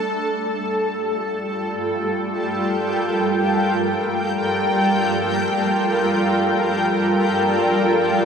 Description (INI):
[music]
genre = ambient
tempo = free time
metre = none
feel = none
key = G minor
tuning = A4 = 439 Hz
[part]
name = granular cloud pad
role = sustained chords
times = 0.0-8.2 s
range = G3 to G5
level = -18 LUFS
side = equal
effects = built-in reverb
[sound]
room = wet lush hall reverb, RT60 3.0 s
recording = none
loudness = -18 LUFS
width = side -6 dB against mid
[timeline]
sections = 0.0-8.2 A section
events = none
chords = 0.0 Gm9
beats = free time